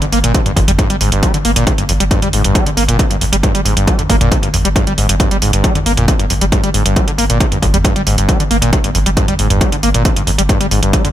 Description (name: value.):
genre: driving peak-time techno.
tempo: 136 BPM.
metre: 4/4.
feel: straight.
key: G phrygian.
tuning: A4 = 440 Hz.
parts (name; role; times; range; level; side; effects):
overdriven acid bass; riff; 0.0-11.1 s; F2 to Bb3; -16 LUFS; equal; distortion, wide subtle chorus, sidechain pumping, ping-pong delay.
saturated sub bass; bass; 0.0-11.1 s; G1; -18 LUFS; equal; sidechain pumping, low-pass filter.
techno drum kit; drums; 0.0-11.1 s; hi-hat, toms; -18 LUFS; right 2 dB; overdrive, sidechain pumping on hats, sidechain pumping on toms, sidechain pumping on cymbals.
electronic kick drum; drums; 0.3-11.0 s; none; -15 LUFS; equal; none.
room: little or no reverb.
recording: none.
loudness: -11 LUFS.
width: side -12 dB against mid.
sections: 0.0-11.1 A section.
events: none.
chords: none.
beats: 0.34 0.79 1.23 | 1.67 2.11 2.55 2.99 | 3.43 3.88 4.32 4.76 | 5.20 5.64 6.08 6.52 | 6.96 7.40 7.84 8.29 | 8.73 9.17 9.61 10.05 | 10.49 10.93.